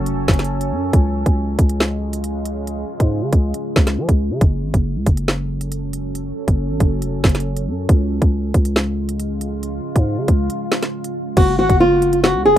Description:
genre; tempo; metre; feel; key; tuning
hip hop, drill; 138 BPM; 4/4; half-time; F# harmonic minor; A4 = 441 Hz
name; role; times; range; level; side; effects
deep dark ambient pad; sustained chords; 0.0-12.6 s; C#3 to A4; -26 LUFS; right 1 dB; chorus, built-in reverb
growling 808-style bass; bass; 0.0-12.6 s; E#1 to E#3; -21 LUFS; equal; none
drill drum kit; drums; 0.1-12.3 s; crash cymbal, hi-hat, kick drum, snare drum; -15 LUFS; equal; none
flamenco guitar; melody; 11.4-12.6 s; E#4 to G#4; -13 LUFS; equal; digital delay
concert flute; second line; 11.6-11.8 s; F#5; -25 LUFS; left 2 dB; digital delay
room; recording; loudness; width
little or no reverb; rough home demo mix; -16 LUFS; side -11 dB against mid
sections
0.0-11.4 A section; 11.4-12.6 B section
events
break 10.5-11.4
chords
0.0 F#m; 0.9 C#; 4.4 F#m; 7.9 C#; 11.4 F#m

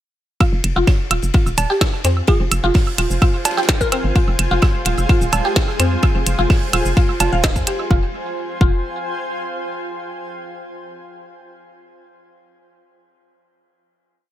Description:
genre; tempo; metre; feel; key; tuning
minimal techno; 128 BPM; 4/4; straight; F minor; A4 = 440 Hz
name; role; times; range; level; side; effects
mallet-like synth pluck; riff; 0.4-8.8 s; C4 to F5; -23 LUFS; equal; lush chorus, sidechain pumping, digital delay
electronic kick drum; drums; 0.4-8.7 s; none; -16 LUFS; equal; none
oversized low-tuned drum kit; drums; 0.4-7.8 s; hi-hat, ride cymbal, snare drum; -31 LUFS; left 2 dB; high-pass filter on cymbals, high-pass filter on hats, high-pass filter on snare, high-pass filter on room
claves, woodblock and cowbell; percussion; 0.4-7.9 s; none; -24 LUFS; right 7 dB; digital delay
granular cloud pad; texture; 2.1-9.7 s; F4 to Ab5; -27 LUFS; right 1 dB; built-in reverb, sidechain pumping
hollow knocking FM bass; bass; 0.5-8.8 s; Eb1 to F2; -20 LUFS; equal; sidechain pumping
minimal click drum kit; drums; 0.6-7.8 s; hi-hat, shaker, snare drum; -19 LUFS; equal; none
glassy wavetable pluck; melody; 2.3-4.0 s; Ab4 to Bb4; -26 LUFS; left 2 dB; chorus, digital delay
flickering grainy texture; texture; 4.8-7.9 s; Ab3 to Ab4; -31 LUFS; left 2 dB; built-in reverb, analog chorus, sidechain pumping
room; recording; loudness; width
little or no reverb; bright 1980s-style digital production; -15 LUFS; side -12 dB against mid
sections
0.4-7.9 drop; 7.9-9.8 final chord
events
drop 0.4-7.9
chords
0.4 Fm

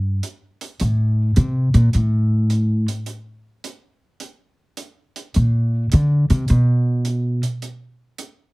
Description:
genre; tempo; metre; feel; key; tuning
jazz piano trio; 105 BPM; 4/4; swing 68% on 8ths; unclear; A4 = 436 Hz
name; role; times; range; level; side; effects
upright bass; bass; 0.0-7.4 s; G2 to D3; -16 LUFS; equal; none
hi-hat; drums; 0.2-8.4 s; none; -34 LUFS; right 5 dB; none
room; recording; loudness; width
little or no reverb; heavily compressed radio sound; -16 LUFS; side -26 dB against mid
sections
0.0-8.5 A section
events
upright bass solo 0.0-8.5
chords
none

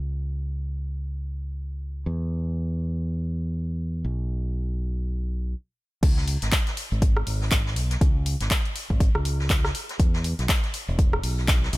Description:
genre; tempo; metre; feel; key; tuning
deep house; 121 BPM; 4/4; swing 59% on 16ths; C# minor; A4 = 440 Hz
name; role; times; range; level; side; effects
fingered electric bass; bass; 0.0-11.8 s; E1 to E2; -26 LUFS; equal; sidechain pumping
deep house drum kit; drums; 6.0-11.8 s; crash cymbal, handclaps, hi-hat, rim click; -28 LUFS; equal; none
electronic kick drum; drums; 6.0-11.6 s; none; -22 LUFS; equal; none
vintage brush drum kit; drums; 6.0-11.8 s; hi-hat, snare drum; -36 LUFS; left 1 dB; sidechain pumping on hats, high-pass filter on hats, high-pass filter on snare, high-pass filter on room
room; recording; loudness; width
small room ambience; none; -23 LUFS; side -19 dB against mid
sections
0.0-6.0 A section; 6.0-11.8 B section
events
stop 5.5-6.0; drop 6.0-11.8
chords
none

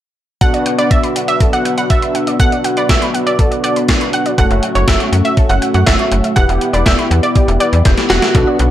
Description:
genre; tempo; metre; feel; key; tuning
synth-pop; 121 BPM; 4/4; straight; B minor; A4 = 440 Hz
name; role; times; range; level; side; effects
analog pluck; second line; 0.4-8.2 s; C#5 to F#5; -18 LUFS; right 2 dB; chorus, tape echo
mellow synth brass; accompaniment; 0.4-8.7 s; A3 to G4; -18 LUFS; left 1 dB; chorus
wide unison pluck; arpeggios; 0.4-8.7 s; G4 to A6; -23 LUFS; equal; tape echo
gated 80s digital drum machine; drums; 0.4-8.7 s; hi-hat, kick drum, snare drum; -14 LUFS; equal; gated reverb, gated reverb snare
slap-like FM bass; bass; 4.4-8.7 s; E1 to F#2; -14 LUFS; equal; tube saturation
direct-recorded clean electric guitar; melody; 8.1-8.6 s; F#4; -15 LUFS; equal; tremolo, tape echo
room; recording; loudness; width
light reverb; dry, gritty hardware recording; -11 LUFS; side -12 dB against mid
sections
0.4-8.3 A section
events
drum fill 7.9-8.3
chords
0.4 Bm7; 4.4 F#m7; 6.4 Emadd9

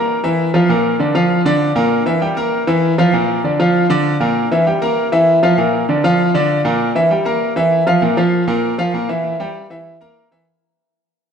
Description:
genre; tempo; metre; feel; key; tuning
latin; 196 BPM; 4/4; straight; unclear; A4 = 441 Hz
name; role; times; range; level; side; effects
clear concert grand piano; solo; 0.0-10.4 s; Bb2 to Bb5; -13 LUFS; equal; none
room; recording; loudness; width
wet plate reverb, RT60 2.7 s; heard from further back in the room; -13 LUFS; side -7 dB against mid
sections
0.0-8.0 A section; 8.0-10.5 B section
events
fade-out 8.0-10.5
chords
0.0 E(b5, no3)/Bb; 0.7 Bb; 1.9 Edim/Bb; 3.1 Bb; 4.4 Edim/Bb; 5.6 Bb; 6.8 Edim/Bb; 8.0 Bb5; 9.2 Edim

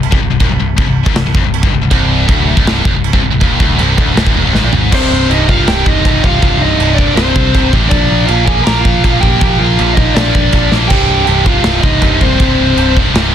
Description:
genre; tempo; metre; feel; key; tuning
heavy metal; 160 BPM; 4/4; straight; C minor; A4 = 439 Hz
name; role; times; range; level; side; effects
high-gain distorted guitar; riff; 0.0-13.3 s; C2 to Bb3; -20 LUFS; left 1 dB; distortion
scooped high-gain guitar; riff; 0.0-13.3 s; C2 to Bb3; -18 LUFS; left 11 dB; distortion
picked electric bass; bass; 0.0-13.3 s; C1 to C2; -15 LUFS; equal; none
big rock drum kit; drums; 0.0-13.2 s; china cymbal, crash cymbal, kick drum, snare drum, toms; -13 LUFS; equal; none
heavy high-gain guitar; riff; 1.9-13.3 s; C2 to Bb3; -17 LUFS; right 15 dB; distortion
high-gain lead guitar; melody; 4.9-12.9 s; C5 to Bb5; -17 LUFS; equal; distortion
bluesy overdriven lead guitar; second line; 4.9-12.9 s; C4 to Bb4; -19 LUFS; right 2 dB; distortion
room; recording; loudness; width
little or no reverb; dense, heavily limited modern master; -9 LUFS; side -9 dB against mid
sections
0.0-4.9 A section; 4.9-13.3 B section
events
drum fill 4.5-4.9, 10.7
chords
0.0 Cm; 7.9 Bb; 10.9 Cm

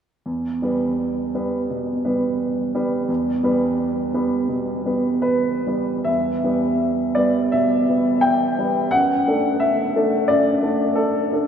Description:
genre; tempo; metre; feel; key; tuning
classical, romantic character piece for solo piano; 83 BPM; 4/4; uneven beats, rubato; E minor; A4 = 442 Hz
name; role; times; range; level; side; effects
warm grand piano; solo; 0.3-11.5 s; E2 to G5; -18 LUFS; equal; none
room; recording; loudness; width
wet cathedral reverb, RT60 4.7 s; heard from further back in the room; -18 LUFS; side -8 dB against mid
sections
0.3-6.1 A section; 6.1-11.5 B section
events
none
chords
0.3 Em; 8.9 D/F#

